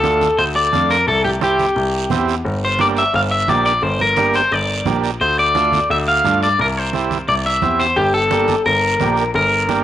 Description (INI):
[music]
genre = latin, cumbia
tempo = 174 BPM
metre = 4/4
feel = straight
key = G dorian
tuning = A4 = 441 Hz
[part]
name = electric guitar at the edge of break-up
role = melody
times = 0.0-9.8 s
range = G4 to F5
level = -16 LUFS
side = left 1 dB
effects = spring reverb
[part]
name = overdriven combo organ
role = accompaniment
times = 0.0-9.8 s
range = A3 to G4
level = -22 LUFS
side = right 8 dB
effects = cassette tape, plate reverb
[part]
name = warm concert grand piano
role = bass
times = 0.0-9.8 s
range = G1 to G2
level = -22 LUFS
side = left 1 dB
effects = none
[part]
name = congas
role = percussion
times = 0.0-9.8 s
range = none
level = -26 LUFS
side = right 6 dB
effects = none
[part]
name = guiro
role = percussion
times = 0.0-9.8 s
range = none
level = -32 LUFS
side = right 9 dB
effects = none
[sound]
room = light reverb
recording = home recording on cassette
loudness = -14 LUFS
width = side -12 dB against mid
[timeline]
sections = 0.0-9.8 A section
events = none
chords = 0.0 Dm; 1.1 C; 2.5 Gm; 5.2 Dm; 6.6 C; 8.0 Gm